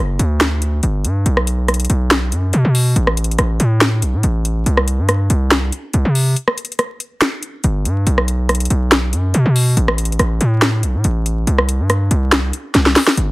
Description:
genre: hip hop, trap.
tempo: 141 BPM.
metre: 4/4.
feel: half-time.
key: unclear.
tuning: A4 = 442 Hz.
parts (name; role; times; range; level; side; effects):
distorted 808-style bass; bass; 0.0-13.3 s; F#1 to C3; -15 LUFS; equal; distortion.
trap drum kit; drums; 0.2-13.3 s; finger snaps, hi-hat, rim click, snare drum; -16 LUFS; equal; soft clipping on snare.
room: little or no reverb.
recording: dense, heavily limited modern master, vinyl crackle.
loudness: -14 LUFS.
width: side -21 dB against mid.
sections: 0.0-13.2 A section.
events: break 6.4-7.2; drum fill 12.7-13.2.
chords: none.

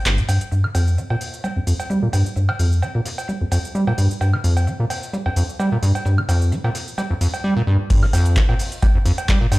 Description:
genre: acid house.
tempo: 130 BPM.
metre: 4/4.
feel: swing 54% on 16ths.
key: G minor.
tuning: A4 = 440 Hz.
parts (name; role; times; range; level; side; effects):
deep acid bass; riff; 0.1-9.6 s; G1 to G3; -18 LUFS; equal; tube saturation, sidechain pumping.
booming analog drum machine; drums; 0.1-9.6 s; cowbell, crash cymbal, handclaps, hi-hat, shaker, woodblock; -27 LUFS; right 1 dB; none.
cloth-damped thuddy drum kit; drums; 0.1-9.6 s; hi-hat, snare drum; -39 LUFS; left 1 dB; high-pass filter on hats, low-pass filter on hats, high-pass filter on snare, low-pass filter on snare, high-pass filter on room, low-pass filter on room.
electronic kick drum; drums; 7.9-9.4 s; none; -17 LUFS; equal; none.
room: wet small room reverb, RT60 0.5 s.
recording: played on a big sound system in a bare room, stone room reverb.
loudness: -17 LUFS.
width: side -20 dB against mid.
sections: 0.5-7.9 A section; 7.9-9.6 B section.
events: break 0.1-0.5; drop 7.9-9.6.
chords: none.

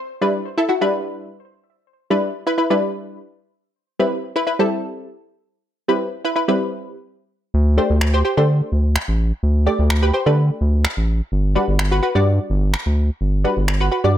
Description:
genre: dance-pop.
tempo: 127 BPM.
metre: 4/4.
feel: straight.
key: E minor.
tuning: A4 = 442 Hz.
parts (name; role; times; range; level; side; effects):
punchy chord stab; accompaniment; 0.2-14.2 s; G3 to D5; -19 LUFS; equal; chorus.
round analog bass; bass; 7.5-14.2 s; G1 to D3; -16 LUFS; equal; none.
finger snaps; drums; 8.0-13.8 s; none; -24 LUFS; equal; none.
room: light reverb, small room ambience.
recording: none.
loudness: -17 LUFS.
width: side -11 dB against mid.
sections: 0.0-14.2 A section.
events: none.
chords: 0.0 Em7; 3.8 Cmaj7; 7.5 D7sus4; 11.3 Gmaj7.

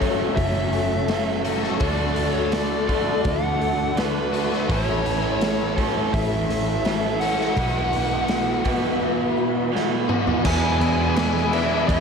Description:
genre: rock, shoegaze and dream pop.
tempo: 83 BPM.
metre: 4/4.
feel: straight.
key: unclear.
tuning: A4 = 440 Hz.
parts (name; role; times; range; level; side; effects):
ensemble organ-string; sustained chords; 0.0-12.0 s; F#4 to B5; -32 LUFS; equal; phaser, ensemble chorus.
fingerpicked twelve-string acoustic guitar; arpeggios; 0.0-12.0 s; E3 to G#4; -32 LUFS; left 10 dB; lush chorus, analog delay.
biting overdriven guitar; riff; 0.0-12.0 s; E2 to F#4; -26 LUFS; left 11 dB; ensemble chorus.
crunchy overdriven guitar; riff; 0.0-12.0 s; E2 to A4; -26 LUFS; right 12 dB; reverse reverb.
vintage muted picked electric bass; bass; 0.0-12.0 s; F#1 to E2; -28 LUFS; equal; none.
raw garage drum kit; drums; 0.0-12.0 s; crash cymbal, hi-hat, kick drum, snare drum, toms; -27 LUFS; equal; none.
fuzz lead guitar; melody; 0.4-12.0 s; B4 to G#5; -27 LUFS; right 1 dB; distortion, analog delay.
room: light reverb, studio reverb.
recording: none.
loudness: -20 LUFS.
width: side -6 dB against mid.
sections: 0.0-10.4 A section; 10.4-12.0 B section.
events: drum fill 9.7-10.4.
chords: 0.0 F#m7; 1.8 D; 4.7 A6; 7.6 Bsus4; 10.4 E7.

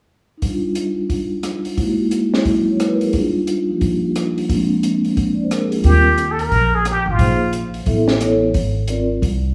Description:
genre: jazz, small-group swing and bop.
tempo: 177 BPM.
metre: 4/4.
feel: swing 64% on 8ths.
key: Eb major.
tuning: A4 = 439 Hz.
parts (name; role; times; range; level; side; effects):
vibraphone with soft mallets; accompaniment; 0.4-9.1 s; F3 to E5; -20 LUFS; equal; none.
compact cocktail drum kit; drums; 0.4-9.3 s; hi-hat, kick drum, rim click, snare drum; -26 LUFS; equal; none.
trumpet with plunger mute; melody; 5.8-7.6 s; F4 to Bb4; -20 LUFS; equal; none.
upright bass; bass; 5.8-9.5 s; Ab1 to Eb2; -21 LUFS; equal; none.
room: wet recital hall reverb, RT60 1.4 s.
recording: recorded in a church or concert hall, studio reverb.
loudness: -18 LUFS.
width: mono.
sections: 0.4-5.8 A section; 5.8-9.5 B section.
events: none.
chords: 0.4 Ebmaj9; 1.8 Emaj9#11; 3.1 Ebmaj9; 4.5 Bb9; 5.8 Eb; 7.2 Bbsus2; 7.9 Aadd9; 8.5 Ab.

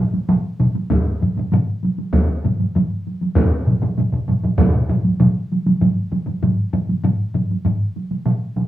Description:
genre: japanese traditional, taiko drum ensemble.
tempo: 98 BPM.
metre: 4/4.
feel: straight.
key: none.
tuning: none.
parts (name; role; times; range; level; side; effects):
taiko ensemble; percussion; 0.1-8.7 s; none; -20 LUFS; right 2 dB; none.
taiko ensemble; percussion; 0.3-8.7 s; none; -20 LUFS; equal; none.
taiko ensemble; percussion; 0.9-7.8 s; none; -22 LUFS; left 2 dB; none.
taiko ensemble; percussion; 0.9-4.7 s; none; -19 LUFS; equal; none.
room: wet studio ambience, RT60 0.5 s.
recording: rough home demo mix, small room ambience.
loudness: -16 LUFS.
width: side -14 dB against mid.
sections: 0.0-5.8 A section; 5.8-8.7 B section.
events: none.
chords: none.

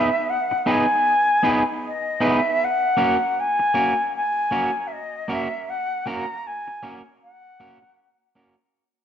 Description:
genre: reggae.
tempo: 78 BPM.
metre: 4/4.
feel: swing 60% on 16ths.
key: F# mixolydian.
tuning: A4 = 440 Hz.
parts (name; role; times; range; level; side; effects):
concert flute; melody; 0.0-8.3 s; D#5 to A#5; -21 LUFS; left 1 dB; tape echo.
electric guitar at the edge of break-up; accompaniment; 0.0-8.5 s; A#3 to B4; -24 LUFS; right 1 dB; tube saturation, spring reverb, tape echo.
room: moderate echo chamber reverb, RT60 1.6 s.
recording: nothing above 7.9 kHz.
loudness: -19 LUFS.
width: side -8 dB against mid.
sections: 0.0-2.6 A section; 2.6-8.7 B section.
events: fade-out 2.6-8.7.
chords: 0.0 Emaj7; 2.6 F#.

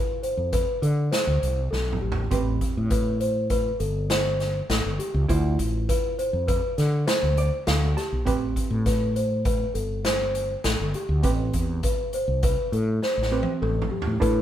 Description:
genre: progressive instrumental, band music in an uneven meter.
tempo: 101 BPM.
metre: 5/4.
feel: straight.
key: A minor.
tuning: A4 = 440 Hz.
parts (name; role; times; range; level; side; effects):
hollow-body jazz guitar; accompaniment; 0.0-14.4 s; C4 to A5; -30 LUFS; right 5 dB; none.
celesta; arpeggios; 0.0-14.4 s; G4 to C5; -27 LUFS; left 1 dB; none.
street-band drum kit; drums; 0.2-14.4 s; hi-hat, kick drum, snare drum, toms; -27 LUFS; equal; none.
fretless electric bass; bass; 0.4-14.4 s; G1 to D3; -25 LUFS; equal; none.
room: light reverb.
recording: band playing live in one room.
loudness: -22 LUFS.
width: side -11 dB against mid.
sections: 0.0-14.2 A section.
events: drum fill 1.7-2.3, 13.0-14.2; hollow-body jazz guitar fill 7.1-8.3.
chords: 0.0 Dm7; 2.3 Am9; 5.3 Dm7; 8.3 Am9; 11.2 Am7.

